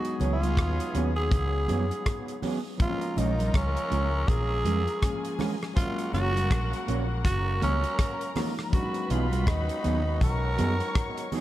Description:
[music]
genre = lovers rock reggae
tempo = 81 BPM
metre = 4/4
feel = swing 60% on 16ths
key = F# major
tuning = A4 = 441 Hz
[part]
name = growling tenor saxophone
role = melody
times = 0.0-11.3 s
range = C#4 to A#4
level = -32 LUFS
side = right 1 dB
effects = tape echo
[part]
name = clear horn section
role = second line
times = 0.0-11.3 s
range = C#3 to G#4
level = -40 LUFS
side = left 2 dB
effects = dub echo
[part]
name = mellow tine electric piano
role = accompaniment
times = 0.0-11.4 s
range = E#3 to D#4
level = -36 LUFS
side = left 3 dB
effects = medium stereo tremolo, dub echo
[part]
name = damped 70s drum kit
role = drums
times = 0.0-11.4 s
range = hi-hat, kick drum, rim click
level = -28 LUFS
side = equal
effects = none
[part]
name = mellow electric guitar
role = stabs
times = 0.2-11.4 s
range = F#3 to A#4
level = -34 LUFS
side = right 4 dB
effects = analog chorus, dub echo
[part]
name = vintage muted fingered electric bass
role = bass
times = 0.2-10.8 s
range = F#1 to F#2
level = -28 LUFS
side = equal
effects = none
[part]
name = congas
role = percussion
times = 0.2-11.4 s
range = none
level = -37 LUFS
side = right 4 dB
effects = none
[part]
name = muted symphonic string section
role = second line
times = 2.8-11.4 s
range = G#4 to C#6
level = -39 LUFS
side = left 4 dB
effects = dub echo
[sound]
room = small room ambience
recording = none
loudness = -24 LUFS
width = side -14 dB against mid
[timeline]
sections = 0.0-11.4 A section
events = none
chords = 0.0 C#7sus4; 2.8 A#m7; 5.8 F#maj7; 8.7 B6

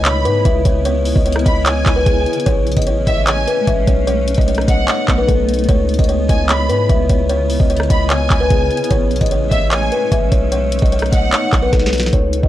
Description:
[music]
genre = hip hop, trap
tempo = 149 BPM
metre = 4/4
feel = half-time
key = C# minor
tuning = A4 = 440 Hz
[part]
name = buzzing kalimba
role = melody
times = 0.0-12.5 s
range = G#4 to E5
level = -18 LUFS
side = left 3 dB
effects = low-pass filter
[part]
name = bright studio violin section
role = second line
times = 0.0-11.7 s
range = E5 to B5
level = -24 LUFS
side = right 2 dB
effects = analog delay
[part]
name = granular cloud pad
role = sustained chords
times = 0.0-12.1 s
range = C#3 to E4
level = -23 LUFS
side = equal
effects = built-in reverb
[part]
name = long sustained 808-style bass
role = bass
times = 0.0-12.5 s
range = A1 to G#2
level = -18 LUFS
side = equal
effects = none
[part]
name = trap drum kit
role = drums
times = 0.0-12.5 s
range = handclaps, hi-hat, kick drum, rim click, snare drum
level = -16 LUFS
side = equal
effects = none
[sound]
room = little or no reverb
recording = dry, gritty hardware recording, cassette tape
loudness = -13 LUFS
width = side -13 dB against mid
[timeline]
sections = 0.0-12.1 A section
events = drum fill 11.7-12.1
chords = 0.0 C#m7; 2.5 Amaj7; 4.1 B7; 5.7 C#m7; 8.9 Amaj7; 10.5 B7

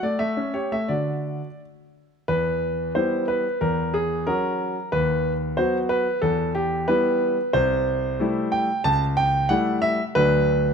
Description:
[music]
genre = classical-period piano sonatina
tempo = 91 BPM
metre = 2/4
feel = rubato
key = E minor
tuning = A4 = 440 Hz
[part]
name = warm grand piano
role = solo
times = 0.0-10.7 s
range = C2 to A5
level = -20 LUFS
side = equal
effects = none
[sound]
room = light reverb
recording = close, detailed microphones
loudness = -20 LUFS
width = side -6 dB against mid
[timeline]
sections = 0.0-2.3 A section; 2.3-10.7 B section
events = none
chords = 0.2 A7; 0.9 D; 2.3 Em; 3.6 F#7/E; 4.9 B/D#; 6.2 Em; 7.5 Am7/C; 8.8 A7/C#; 10.2 D

